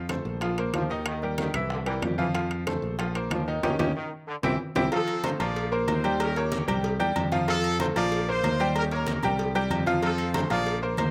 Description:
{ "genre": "latin, salsa", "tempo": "187 BPM", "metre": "4/4", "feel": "straight", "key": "F major", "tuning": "A4 = 440 Hz", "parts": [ { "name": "bright upright piano", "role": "accompaniment", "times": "0.0-11.1 s", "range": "Eb3 to G5", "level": "-30 LUFS", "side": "equal", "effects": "none" }, { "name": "modern bright fingered electric bass", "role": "bass", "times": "0.0-11.1 s", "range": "Bb1 to F2", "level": "-33 LUFS", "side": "equal", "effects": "none" }, { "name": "bongos and cowbell", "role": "percussion", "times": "0.1-11.1 s", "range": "none", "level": "-38 LUFS", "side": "equal", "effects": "none" }, { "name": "congas", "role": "percussion", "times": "0.1-11.1 s", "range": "none", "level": "-37 LUFS", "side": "equal", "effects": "none" }, { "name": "timbales and agogo bells", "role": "percussion", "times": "0.1-11.1 s", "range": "none", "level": "-36 LUFS", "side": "equal", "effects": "none" }, { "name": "brilliant trombone section", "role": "second line", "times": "0.7-4.8 s", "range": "D3 to F3", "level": "-38 LUFS", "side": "equal", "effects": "slapback echo" }, { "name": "bright horn section", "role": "melody", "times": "4.9-11.1 s", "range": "Bb3 to D5", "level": "-33 LUFS", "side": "equal", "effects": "none" } ], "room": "little or no reverb", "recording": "recorded outdoors, with no room sound", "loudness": "-27 LUFS", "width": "mono", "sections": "0.0-4.9 A section; 4.9-11.1 B section", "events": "band accent 3.6-4.9; drum fill 4.3-4.9", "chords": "0.4 Bbsus2; 1.1 Eb; 1.7 C7; 2.3 F; 3.0 Bbsus2; 3.6 Eb7; 4.3 C; 4.9 F; 5.6 Bbsus2; 6.2 Eb7; 6.8 C; 7.5 F; 8.1 Bbsus2; 8.8 Eb7; 9.4 C5; 10.0 F" }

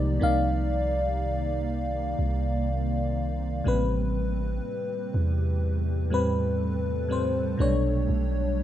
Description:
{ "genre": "contemporary R&B", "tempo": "61 BPM", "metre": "4/4", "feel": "swing 54% on 16ths", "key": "unclear", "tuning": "A4 = 440 Hz", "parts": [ { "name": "FM electric piano with soft pad layer", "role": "accompaniment", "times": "0.0-8.6 s", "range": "A2 to F5", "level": "-28 LUFS", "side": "left 2 dB", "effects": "chorus" }, { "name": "ethereal airy pad", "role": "sustained chords", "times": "0.0-8.6 s", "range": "C3 to D5", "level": "-33 LUFS", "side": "right 2 dB", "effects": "ensemble chorus, built-in reverb" }, { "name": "long sustained 808-style bass", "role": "bass", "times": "0.0-8.6 s", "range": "A1 to E2", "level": "-27 LUFS", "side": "equal", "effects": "none" } ], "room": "light reverb", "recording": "rough home demo mix", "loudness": "-24 LUFS", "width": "side -12 dB against mid", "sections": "0.0-3.7 A section; 3.7-8.6 B section", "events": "none", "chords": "0.0 Cm9; 3.7 Am9; 7.6 Bm9" }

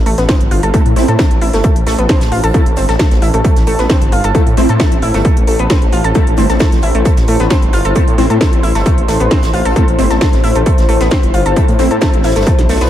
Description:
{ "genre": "driving peak-time techno", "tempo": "133 BPM", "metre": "4/4", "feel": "straight", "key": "A minor", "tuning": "A4 = 445 Hz", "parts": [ { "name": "detuned saw bass", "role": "bass", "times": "0.0-12.9 s", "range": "G1 to A2", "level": "-15 LUFS", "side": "equal", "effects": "sidechain pumping" }, { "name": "sub drop", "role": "sound effects", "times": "0.3-0.7 s", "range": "none", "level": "barely audible", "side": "none", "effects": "none" }, { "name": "ethereal airy pad", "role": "texture", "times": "0.0-12.9 s", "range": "E4 to C6", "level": "-20 LUFS", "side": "left 3 dB", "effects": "ensemble chorus, built-in reverb, sidechain pumping" }, { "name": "analog pluck", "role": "riff", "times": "0.1-12.9 s", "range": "A3 to A4", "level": "-18 LUFS", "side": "equal", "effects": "chorus, overdrive, sidechain pumping, tape echo" }, { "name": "techno drum kit", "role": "drums", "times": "0.1-12.9 s", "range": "hi-hat, snare drum", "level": "-21 LUFS", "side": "equal", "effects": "sidechain pumping on hats, sidechain pumping on cymbals" }, { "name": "unplugged drum kit", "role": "drums", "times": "0.1-12.9 s", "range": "hi-hat, snare drum", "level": "-30 LUFS", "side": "right 2 dB", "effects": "high-pass filter on hats, high-pass filter on snare, high-pass filter on room" }, { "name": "electronic kick drum", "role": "drums", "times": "0.3-12.6 s", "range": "none", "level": "-12 LUFS", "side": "equal", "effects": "none" }, { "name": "rave stab", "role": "stabs", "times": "0.7-11.9 s", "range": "A3 to E4", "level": "-20 LUFS", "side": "equal", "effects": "chorus, built-in reverb, sidechain pumping, diffuse ambient delay" } ], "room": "light reverb, digital ambience", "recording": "none", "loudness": "-9 LUFS", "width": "side -12 dB against mid", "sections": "0.0-12.9 A section", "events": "impact 0.0-0.7", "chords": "0.0 Am" }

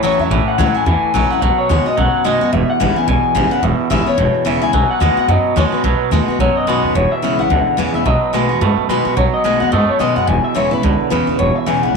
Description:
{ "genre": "rockabilly", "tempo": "217 BPM", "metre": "4/4", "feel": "swing 59% on 8ths", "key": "E major", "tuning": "A4 = 440 Hz", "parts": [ { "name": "electric guitar through a small old amp", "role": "melody", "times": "0.0-12.0 s", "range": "B4 to G#5", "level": "-17 LUFS", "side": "left 4 dB", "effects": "tape echo" }, { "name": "picked steel-string acoustic guitar", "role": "accompaniment", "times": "0.0-12.0 s", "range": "E2 to F#4", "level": "-21 LUFS", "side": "left 10 dB", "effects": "none" }, { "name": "twangy electric guitar", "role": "riff", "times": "0.0-12.0 s", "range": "E2 to A3", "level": "-19 LUFS", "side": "right 14 dB", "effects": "none" }, { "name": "upright bass", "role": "bass", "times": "0.0-12.0 s", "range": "E1 to B2", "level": "-18 LUFS", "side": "equal", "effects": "none" } ], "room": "light reverb, small room ambience", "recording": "1960s-style stereo with parts hard left and right", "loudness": "-13 LUFS", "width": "side -5 dB against mid", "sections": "0.0-7.0 A section; 7.0-12.0 B section", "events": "none", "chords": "0.0 A; 1.4 B7; 2.5 E; 4.7 B7; 7.0 E; 8.1 B7; 10.3 E" }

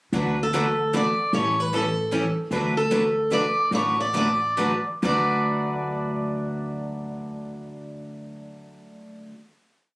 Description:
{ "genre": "acoustic string swing (jazz manouche)", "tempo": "129-152 BPM", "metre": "3/4", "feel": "swing 62% on 8ths", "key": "D major", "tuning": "A4 = 440 Hz", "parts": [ { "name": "picked steel-string acoustic guitar", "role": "accompaniment", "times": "0.1-9.3 s", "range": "D3 to B4", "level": "-30 LUFS", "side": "left 1 dB", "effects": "none" }, { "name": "picked steel-string acoustic guitar", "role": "accompaniment", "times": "0.1-9.3 s", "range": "D3 to B4", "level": "-29 LUFS", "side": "equal", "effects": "none" }, { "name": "upright bass", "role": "bass", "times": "0.1-9.3 s", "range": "A1 to D2", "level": "-30 LUFS", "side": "equal", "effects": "none" }, { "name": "picked steel-string acoustic guitar", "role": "melody", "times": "0.4-9.3 s", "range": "A4 to D5", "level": "-24 LUFS", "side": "equal", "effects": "none" } ], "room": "moderate club reverb, RT60 0.6 s", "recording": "recorded on a phone in the room, studio reverb, compression", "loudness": "-21 LUFS", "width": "side -23 dB against mid", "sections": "0.1-5.0 A section; 5.0-7.8 final chord", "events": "slowing down 2.5-5.0", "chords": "0.1 D6; 1.3 A7; 2.5 D6" }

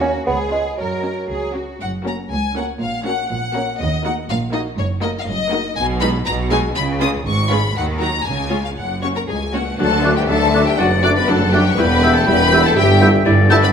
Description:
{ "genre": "cinematic, playful, whimsical film cue", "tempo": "120 BPM", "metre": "2/4", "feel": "straight", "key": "F# major, D major from 9.8 s", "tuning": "A4 = 440 Hz", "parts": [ { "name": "rich chamber violin section", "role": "melody", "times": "0.0-13.7 s", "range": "F#4 to D#6", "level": "-22 LUFS", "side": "left 4 dB", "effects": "none" }, { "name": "warm symphonic violin section", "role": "second line", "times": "0.0-13.7 s", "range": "D#4 to D5", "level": "-24 LUFS", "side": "left 4 dB", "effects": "none" }, { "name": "mellow bassoon", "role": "accompaniment", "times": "0.0-1.5, 10.0-13.6 s", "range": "F#3 to C#4", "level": "-24 LUFS", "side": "right 2 dB", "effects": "none" }, { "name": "warm symphonic viola section", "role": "accompaniment", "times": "0.0-13.6 s", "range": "F#3 to F#4", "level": "-23 LUFS", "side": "right 1 dB", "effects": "none" }, { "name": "rich chamber double bass section", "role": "bass", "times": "0.0-13.7 s", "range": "E1 to F#2", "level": "-22 LUFS", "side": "right 2 dB", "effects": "none" }, { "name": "rich studio cello section", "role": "bass", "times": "0.0-13.7 s", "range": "C#2 to A#4", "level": "-23 LUFS", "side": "right 2 dB", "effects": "none" }, { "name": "cymbal swell and tam-tam", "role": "percussion", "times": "7.7-11.7 s", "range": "none", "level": "-29 LUFS", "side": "left 4 dB", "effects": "none" }, { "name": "mellow French horn section", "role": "sustained chords", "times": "9.0-13.7 s", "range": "F#3 to D4", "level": "-22 LUFS", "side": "left 5 dB", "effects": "none" }, { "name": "bright clarinet", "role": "second line", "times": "9.8-13.7 s", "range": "D5 to G5", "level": "-21 LUFS", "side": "left 4 dB", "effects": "none" }, { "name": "warm tuba", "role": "bass", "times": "9.8-13.7 s", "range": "E1 to D2", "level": "-22 LUFS", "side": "right 3 dB", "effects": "none" }, { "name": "bright silver concert flute", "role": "second line", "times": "10.0-13.6 s", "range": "F#6 to G6", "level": "-23 LUFS", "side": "equal", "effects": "none" }, { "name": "warm oboe", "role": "second line", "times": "10.0-13.6 s", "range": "D5 to E5", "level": "-25 LUFS", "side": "right 1 dB", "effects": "none" } ], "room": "wet recital hall reverb, RT60 1.4 s", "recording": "minimal, uncompressed stereo recording", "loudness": "-15 LUFS", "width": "side -7 dB against mid", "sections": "0.0-1.8 A section; 1.8-9.8 A section; 9.8-13.7 B section", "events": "band accent 9.8-10.3", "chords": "0.3 C#7; 0.8 F#; 2.8 F#/A#; 3.8 D#m; 4.8 D#m/F#; 5.8 G#m/B; 6.8 C#7(no3); 7.7 D#m; 8.3 C#; 8.8 F#; 9.8 D; 10.8 D/F#; 11.8 Em; 12.8 Em/G" }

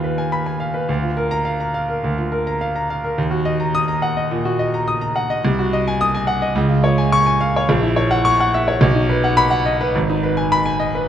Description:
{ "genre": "classical, virtuoso piano study", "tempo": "106 BPM", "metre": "4/4", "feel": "rubato", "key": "Eb minor", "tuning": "A4 = 439 Hz", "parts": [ { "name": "warm concert grand piano", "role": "solo", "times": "0.0-11.1 s", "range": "Ab1 to Eb6", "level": "-16 LUFS", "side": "equal", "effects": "none" } ], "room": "moderate concert hall reverb, RT60 2.3 s", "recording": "none", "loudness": "-16 LUFS", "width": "side -10 dB against mid", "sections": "0.0-11.1 A section", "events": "none", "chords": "0.0 Fm7b5/Eb; 0.9 Bb/D; 3.2 Ebm; 5.4 Ab7/C; 6.6 Db; 7.7 Gb7/Bb; 8.8 B; 9.9 Abm" }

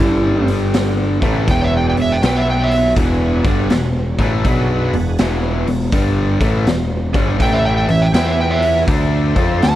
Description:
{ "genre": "blues rock power trio and southern rock", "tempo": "81 BPM", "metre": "4/4", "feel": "swing 65% on 8ths", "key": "unclear", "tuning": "A4 = 440 Hz", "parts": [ { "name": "overdriven slide guitar", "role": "melody", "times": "0.0-2.9, 7.4-9.8 s", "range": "E4 to A5", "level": "-19 LUFS", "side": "right 2 dB", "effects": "none" }, { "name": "smooth overdriven lead guitar", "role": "second line", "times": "0.0-2.9, 7.4-9.8 s", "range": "C#4 to F#5", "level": "-27 LUFS", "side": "right 3 dB", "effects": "none" }, { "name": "overdriven tonewheel organ", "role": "sustained chords", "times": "0.0-9.8 s", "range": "D3 to G#5", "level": "-27 LUFS", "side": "right 4 dB", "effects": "chorus vibrato, slow rotary speaker" }, { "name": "cranked stack guitar", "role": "riff", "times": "0.0-9.8 s", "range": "E2 to F4", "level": "-19 LUFS", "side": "left 1 dB", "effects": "overdrive" }, { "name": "growling picked electric bass", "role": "bass", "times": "0.0-9.8 s", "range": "E1 to F2", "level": "-19 LUFS", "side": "equal", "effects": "overdrive" }, { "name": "raw garage drum kit", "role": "drums", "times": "0.5-9.8 s", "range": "hi-hat, kick drum, snare drum", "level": "-20 LUFS", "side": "equal", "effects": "none" } ], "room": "little or no reverb", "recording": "none", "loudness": "-13 LUFS", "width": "side -13 dB against mid", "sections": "0.0-9.8 A section", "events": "none", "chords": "0.0 G5; 1.1 A7; 1.5 E7; 2.2 B5; 3.0 E7; 7.4 A7; 8.1 E5; 8.9 D7(no3)" }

